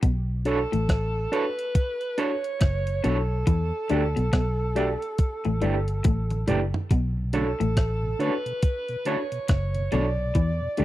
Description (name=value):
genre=lovers rock reggae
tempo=70 BPM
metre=4/4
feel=swing 61% on 16ths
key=B minor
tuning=A4 = 440 Hz
part: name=electric guitar through a small old amp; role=riff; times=0.0-10.8 s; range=F#2 to E3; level=-30 LUFS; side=left 5 dB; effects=none
part: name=vintage muted fingered electric bass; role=bass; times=0.0-10.8 s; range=F#1 to E2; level=-26 LUFS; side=equal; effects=none
part: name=clean 12-bit digital drum machine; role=drums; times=0.0-10.8 s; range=hi-hat, kick drum, rim click, toms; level=-23 LUFS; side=equal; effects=none
part: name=mellow alto saxophone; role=melody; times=0.5-10.8 s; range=A4 to D5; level=-30 LUFS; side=right 1 dB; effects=tape echo
part: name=mellow tine electric piano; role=accompaniment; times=0.5-10.8 s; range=D4 to D5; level=-30 LUFS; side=left 2 dB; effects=slow stereo tremolo
part: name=electric guitar through a small old amp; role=stabs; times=0.5-10.8 s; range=A3 to C#5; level=-29 LUFS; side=right 4 dB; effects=tremolo
part: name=mellow tonewheel organ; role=accompaniment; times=7.2-10.8 s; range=E2 to F#4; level=-33 LUFS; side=right 2 dB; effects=chorus vibrato
room=little or no reverb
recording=dry, close 1970s-style studio recording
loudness=-23 LUFS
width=side -15 dB against mid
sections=0.0-10.8 A section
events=drum fill 6.1-6.9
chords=0.0 Bm9; 3.5 Em11; 5.2 A7sus4; 6.9 Bm9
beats=| 0.03 0.89 1.75 2.61 | 3.47 4.33 5.19 6.05 | 6.91 7.77 8.63 9.49 | 10.35